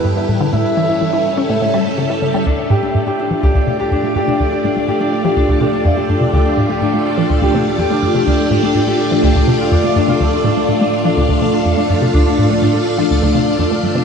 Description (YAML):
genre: ambient, sequencer-driven space music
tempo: 124 BPM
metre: 4/4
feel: straight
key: D minor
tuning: A4 = 442 Hz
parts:
  - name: soft octave-layered synth lead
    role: melody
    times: 0.0-1.9 s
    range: B4 to E5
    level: -23 LUFS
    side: right 1 dB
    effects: chorus, ping-pong delay
  - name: string machine, full ensemble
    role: sustained chords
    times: 0.0-14.0 s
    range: G3 to G5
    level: -16 LUFS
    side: equal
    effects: phaser, ensemble chorus
  - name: resonant blip pluck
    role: riff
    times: 0.0-14.0 s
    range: D2 to E4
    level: -17 LUFS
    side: equal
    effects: phaser, cassette tape, ping-pong delay
  - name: wind-like tuned noise texture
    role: texture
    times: 0.0-14.0 s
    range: A4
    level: -30 LUFS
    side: right 1 dB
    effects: built-in reverb
  - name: Celtic harp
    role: arpeggios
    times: 2.5-14.0 s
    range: D4 to D5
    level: -18 LUFS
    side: left 1 dB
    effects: auto-pan, ping-pong delay
room: moderate huge ambient reverb, RT60 9.7 s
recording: nothing above 10.5 kHz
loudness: -12 LUFS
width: side -6 dB against mid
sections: 0.0-2.5 A section; 2.5-14.0 B section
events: filter sweep on synth arpeggio sound 2.5-14.0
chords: 0.0 Em; 0.5 A7; 2.5 Dm